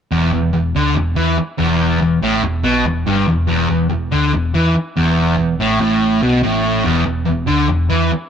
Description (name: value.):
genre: rock.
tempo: 143 BPM.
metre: 4/4.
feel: straight.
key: unclear.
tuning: A4 = 440 Hz.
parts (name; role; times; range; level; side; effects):
fuzz guitar; riff; 0.1-8.2 s; E2 to E3; -15 LUFS; equal; distortion.
hollow-body short-scale picked electric bass; bass; 0.1-8.1 s; E1 to E2; -20 LUFS; equal; tube saturation.
room: light reverb.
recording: none.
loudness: -14 LUFS.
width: side -8 dB against mid.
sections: 0.1-6.9 A section; 6.9-8.3 B section.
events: none.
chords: 0.1 E5.